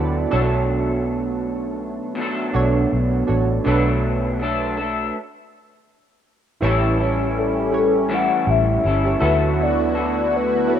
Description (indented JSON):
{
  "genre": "indie pop",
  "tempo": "81 BPM",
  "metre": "4/4",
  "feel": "swing 60% on 16ths",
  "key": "B minor",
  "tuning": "A4 = 440 Hz",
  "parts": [
    { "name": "electric guitar through a small old amp", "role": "accompaniment", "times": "0.0-10.8 s", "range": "A2 to A4", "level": "-23 LUFS", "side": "left 1 dB", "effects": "lush chorus, vibrato effect" },
    { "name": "warm analog keys", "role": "accompaniment", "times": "0.0-10.8 s", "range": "D4 to B5", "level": "-25 LUFS", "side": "right 5 dB", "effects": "chorus" },
    { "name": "vintage muted fingered electric bass", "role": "bass", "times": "0.0-10.8 s", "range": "G1 to D2", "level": "-23 LUFS", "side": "equal", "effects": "none" },
    { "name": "lush unison pad", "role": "sustained chords", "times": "7.0-10.8 s", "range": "D3 to F#4", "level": "-26 LUFS", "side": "right 1 dB", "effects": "chorus, phaser" },
    { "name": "warbly nostalgic lead", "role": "melody", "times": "7.4-10.8 s", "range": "A4 to F#5", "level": "-20 LUFS", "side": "left 4 dB", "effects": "lush chorus, tape echo" }
  ],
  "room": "light reverb, digital ambience",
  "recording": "rough home demo mix",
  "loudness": "-18 LUFS",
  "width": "side -9 dB against mid",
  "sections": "0.0-6.6 A section; 6.6-10.8 B section",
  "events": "synth keys fill 0.0-0.7; stop 5.1-6.6",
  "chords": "0.3 Bm7; 6.6 A7; 9.2 D6"
}